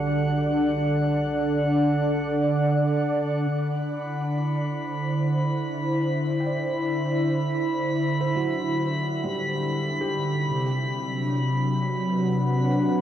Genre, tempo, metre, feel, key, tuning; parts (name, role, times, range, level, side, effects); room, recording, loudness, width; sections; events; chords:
ambient; free time; C lydian; A4 = 440 Hz
warm analog pad; sustained chords; 0.0-13.0 s; C3 to F#5; -23 LUFS; equal; chorus
felt-muted upright piano; arpeggios; 0.0-13.0 s; F#3 to G5; -35 LUFS; equal; tape echo
warm sub bass; bass; 0.0-3.4 s; B1; -48 LUFS; equal
drifting glass-harmonics texture; texture; 0.0-13.0 s; F#5 to B5; -31 LUFS; left 1 dB; chorus, built-in reverb
wet shimmer reverb, RT60 8.5 s; worn, warbling old tape, cassette tape, warbly pitch drift; -22 LUFS; side -10 dB against mid
0.0-3.5 A section; 3.5-13.0 B section
fade-in on felt piano 3.5-13.0; filter sweep on analog synth pad 3.5-13.0
0.0 Gmaj7/B; 3.5 C; 10.4 Bm/C